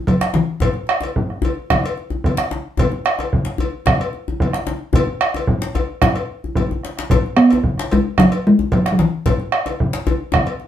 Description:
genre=west african traditional, West African drum ensemble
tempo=111 BPM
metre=4/4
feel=straight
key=E major pentatonic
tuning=A4 = 436 Hz
part: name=talking drum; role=melody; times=0.0-1.4, 7.4-10.1 s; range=E3 to B3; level=-14 LUFS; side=equal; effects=none
part: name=bombo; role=percussion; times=0.1-10.5 s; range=none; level=-18 LUFS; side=right 1 dB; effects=none
part: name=cowbell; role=percussion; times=0.1-10.6 s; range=none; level=-26 LUFS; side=left 4 dB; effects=none
part: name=djembe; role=percussion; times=0.2-10.7 s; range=none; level=-23 LUFS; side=left 3 dB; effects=none
room=wet studio reverb, RT60 0.6 s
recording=band playing live in one room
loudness=-16 LUFS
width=side -11 dB against mid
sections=0.0-10.7 A section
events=drum fill 6.4-7.1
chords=none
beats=0.07 | 0.61 1.16 1.70 2.24 | 2.78 3.33 3.87 4.41 | 4.95 5.49 6.03 6.56 | 7.10 7.64 8.18 8.71 | 9.25 9.79 10.32

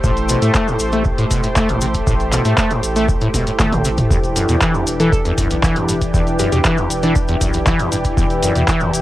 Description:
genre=acid house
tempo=118 BPM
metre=4/4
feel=straight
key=E minor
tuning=A4 = 440 Hz
part: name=lush unison pad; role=sustained chords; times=0.0-9.0 s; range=E3 to C5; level=-23 LUFS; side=equal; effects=chorus, sidechain pumping, cassette tape
part: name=acid bass, saw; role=riff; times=0.0-8.9 s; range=E2 to A3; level=-19 LUFS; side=equal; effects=overdrive, lush chorus, vintage 12-bit sampler grit, sidechain pumping, cassette tape, tape echo
part: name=round analog bass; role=bass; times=0.0-9.0 s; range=E1 to A2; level=-23 LUFS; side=equal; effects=tube saturation, sidechain pumping
part: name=electronic kick drum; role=drums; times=0.0-8.8 s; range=none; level=-19 LUFS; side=equal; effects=overdrive, cassette tape
part: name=cabasa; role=percussion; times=0.0-9.0 s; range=none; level=-28 LUFS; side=left 2 dB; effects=none
part: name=warbly tape-like pad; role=texture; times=0.0-9.0 s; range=E4 to G5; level=-24 LUFS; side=left 1 dB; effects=chorus, built-in reverb, phaser, sidechain pumping, cassette tape
part: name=punchy analog drum machine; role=drums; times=0.2-9.0 s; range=handclaps, hi-hat, toms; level=-21 LUFS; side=equal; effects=cassette tape
part: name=hollow square pluck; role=melody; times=5.0-7.7 s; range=D4 to A4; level=-25 LUFS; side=equal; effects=chorus, cassette tape, tape echo
room=light reverb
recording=home recording on cassette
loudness=-14 LUFS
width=side -15 dB against mid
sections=0.0-9.0 A section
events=drum fill 3.3-4.1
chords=0.0 Am7; 4.1 Em7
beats=| 0.04 0.55 1.05 1.56 | 2.07 2.58 3.09 3.60 | 4.11 4.61 5.12 5.63 | 6.14 6.65 7.16 7.67 | 8.17 8.68

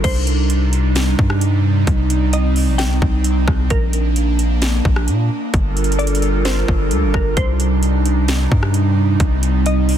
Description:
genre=hip hop, atmospheric cloud-rap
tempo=131 BPM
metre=4/4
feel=half-time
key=C dorian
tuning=A4 = 437 Hz
part: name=glassy wavetable pluck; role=melody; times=0.0-10.0 s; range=Bb4 to G5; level=-29 LUFS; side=left 2 dB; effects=chorus, low-pass filter, ping-pong delay
part: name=airy breathy pad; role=sustained chords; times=0.0-10.0 s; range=C3 to Bb4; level=-20 LUFS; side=right 3 dB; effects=chorus, sidechain pumping
part: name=long sustained 808-style bass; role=bass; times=0.0-10.0 s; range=G1 to Bb2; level=-17 LUFS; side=equal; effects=none
part: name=trap drum kit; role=drums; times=0.0-10.0 s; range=crash cymbal, hi-hat, kick drum, rim click, snare drum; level=-20 LUFS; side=equal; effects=overdrive
room=little or no reverb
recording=dense, heavily limited modern master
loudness=-14 LUFS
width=side -10 dB against mid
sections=0.0-10.0 A section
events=none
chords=0.0 Cmadd9; 3.7 Bb; 5.5 Gm7; 7.4 Cmadd9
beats=| 0.04 0.50 0.96 1.42 | 1.87 2.33 2.79 3.25 | 3.71 4.16 4.62 5.08 | 5.54 6.00 6.45 6.91 | 7.37 7.83 8.29 8.74 | 9.20 9.66

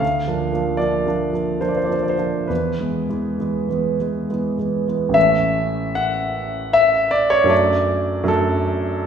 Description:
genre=classical, romantic nocturne for solo piano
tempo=65-80 BPM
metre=3/4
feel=rubato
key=unclear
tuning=A4 = 440 Hz
part: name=warm grand piano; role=solo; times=0.0-9.1 s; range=A1 to F#5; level=-17 LUFS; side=equal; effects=none
room=wet recital hall reverb, RT60 1.5 s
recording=heard from further back in the room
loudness=-17 LUFS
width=side -7 dB against mid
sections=0.0-5.2 A section; 5.2-9.1 B section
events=none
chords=0.0 Bb/D; 2.5 E; 5.2 A; 7.5 D/F#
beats=| 0.02 0.80 1.62 | 2.50 3.41 4.29 | 5.15 5.97 6.75 | 7.51 8.29

